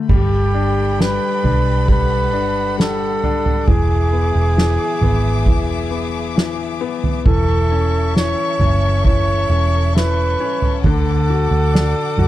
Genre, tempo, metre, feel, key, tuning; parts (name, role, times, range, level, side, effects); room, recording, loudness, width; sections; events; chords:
pop ballad; 67 BPM; 4/4; straight; G major; A4 = 445 Hz
clear baby grand piano; accompaniment; 0.0-12.3 s; D3 to F#4; -22 LUFS; left 9 dB
breathy flugelhorn; melody; 0.1-12.3 s; G4 to C#5; -21 LUFS; right 3 dB; tape echo
warm studio string section; sustained chords; 0.1-12.3 s; G#4 to D6; -28 LUFS; left 5 dB
vintage muted fingered electric bass; bass; 0.1-12.3 s; E1 to F#2; -18 LUFS; right 1 dB
soft-mallet drum kit; drums; 0.1-12.3 s; crash cymbal, kick drum, snare drum, toms; -18 LUFS; right 1 dB
little or no reverb; dry, close 1970s-style studio recording; -14 LUFS; side -14 dB against mid
0.1-12.3 A section
0.1 Gadd9; 3.7 E7; 7.3 A/E; 10.8 D